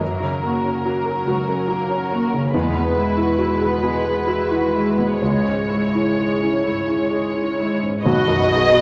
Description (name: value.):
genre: cinematic, emotional film score for orchestra.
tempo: 42-48 BPM (dotted quarters).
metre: 6/8.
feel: rubato.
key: unclear.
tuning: A4 = 440 Hz.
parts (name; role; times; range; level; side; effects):
muted studio violin section; melody; 0.0-8.8 s; A#4 to D#5; -25 LUFS; equal; none.
muted studio violin section; second line; 0.0-8.8 s; G#3 to B4; -32 LUFS; equal; none.
felt-muted upright piano; accompaniment; 0.0-8.8 s; B1 to A#4; -22 LUFS; equal; none.
muted studio viola section; accompaniment; 0.0-8.8 s; F#3 to G#4; -29 LUFS; equal; none.
concert harp; arpeggios; 0.0-8.8 s; E2 to C#5; -35 LUFS; equal; none.
muted studio cello section; bass; 0.0-8.8 s; C#2 to B2; -34 LUFS; equal; none.
muted studio double bass section; bass; 8.0-8.8 s; B1; -34 LUFS; equal; none.
room: wet recital hall reverb, RT60 1.4 s.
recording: none.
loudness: -20 LUFS.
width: mono.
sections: 0.0-8.0 A section.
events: none.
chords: 0.0 F#; 2.5 Eadd9; 5.2 C#m; 8.0 B.